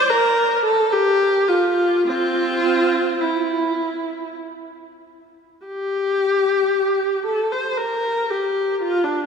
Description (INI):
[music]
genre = classical, free, expressive piece for unaccompanied viola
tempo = 39-62 BPM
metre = 3/4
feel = rubato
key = G dorian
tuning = A4 = 440 Hz
[part]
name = rich viola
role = solo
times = 0.0-9.3 s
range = C4 to C5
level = -18 LUFS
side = equal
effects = none
[sound]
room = wet church reverb, RT60 3.4 s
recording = none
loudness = -17 LUFS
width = side -6 dB against mid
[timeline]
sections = 0.0-5.7 A section; 5.7-9.3 B section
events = none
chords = none